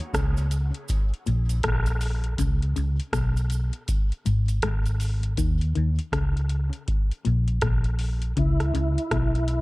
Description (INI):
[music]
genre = dub reggae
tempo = 80 BPM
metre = 4/4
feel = swing 62% on 16ths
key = unclear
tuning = A4 = 440 Hz
[part]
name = booming analog drum machine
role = drums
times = 0.0-9.6 s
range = hi-hat, kick drum, rim click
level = -26 LUFS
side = equal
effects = none
[part]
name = semi-hollow electric guitar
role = riff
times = 0.1-9.3 s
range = Ab2 to Eb3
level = -31 LUFS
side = left 5 dB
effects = dub echo
[part]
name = fingered electric bass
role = bass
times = 0.1-9.6 s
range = Ab1 to Eb2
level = -24 LUFS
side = equal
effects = none
[part]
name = cabasa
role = percussion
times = 0.1-5.6 s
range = none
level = -44 LUFS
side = right 8 dB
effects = high-pass filter on perc, dub echo
[part]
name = tonewheel organ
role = melody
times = 8.4-9.6 s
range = Fb4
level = -32 LUFS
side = right 1 dB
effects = overdrive, chorus vibrato, slow rotary speaker, dub echo
[sound]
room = light reverb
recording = dark, warm production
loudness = -22 LUFS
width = side -21 dB against mid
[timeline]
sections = 0.0-9.6 A section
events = break 0.0-8.4; part muted 5.4-9.6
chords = 0.0 Eb7(no3) (rootless); 2.4 Db5; 5.4 Eb5; 8.4 Dbm7